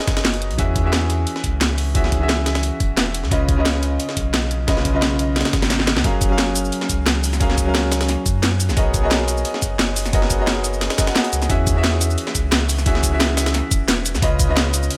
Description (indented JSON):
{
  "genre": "liquid drum and bass",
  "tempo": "176 BPM",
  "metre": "4/4",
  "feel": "swing 54% on 16ths",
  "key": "unclear",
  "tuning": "A4 = 441 Hz",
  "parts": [
    { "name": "bright grand piano", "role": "accompaniment", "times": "0.0-15.0 s", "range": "C#3 to F#5", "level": "-25 LUFS", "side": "equal", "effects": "digital delay" },
    { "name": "breakbeat sampler-style drum kit", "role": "drums", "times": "0.0-15.0 s", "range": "hi-hat, snare drum", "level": "-29 LUFS", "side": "equal", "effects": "high-pass filter on hats, high-pass filter on snare, high-pass filter on room" },
    { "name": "warm sub bass", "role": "bass", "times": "0.1-14.9 s", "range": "E1 to F#2", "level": "-24 LUFS", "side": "equal", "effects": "none" },
    { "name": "drum and bass drum kit", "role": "drums", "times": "0.1-15.0 s", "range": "hi-hat, shaker, snare drum", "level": "-24 LUFS", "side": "equal", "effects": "none" },
    { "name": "electronic kick drum", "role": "drums", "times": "0.1-14.5 s", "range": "none", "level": "-23 LUFS", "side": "equal", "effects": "none" }
  ],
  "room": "light reverb",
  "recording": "none",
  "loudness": "-19 LUFS",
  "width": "mono",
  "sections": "0.0-15.0 A section",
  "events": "drum fill 5.4-6.0; kick drops out 5.7-6.0",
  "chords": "0.0 Bmaj13; 0.6 E69; 3.3 C#9; 6.0 F#maj9; 8.8 Bmaj13; 11.5 E69; 14.2 C#9",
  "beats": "0.25 | 0.59 0.93 1.27 1.61 | 1.95 2.29 2.63 2.98 | 3.32 3.66 4.00 4.34 | 4.68 5.02 5.36 5.70 | 6.04 6.38 6.73 7.07 | 7.41 7.75 8.09 8.43 | 8.77 9.11 9.45 9.79 | 10.13 10.48 10.82 11.16 | 11.50 11.84 12.18 12.52 | 12.86 13.20 13.54 13.88 | 14.23 14.57 14.91"
}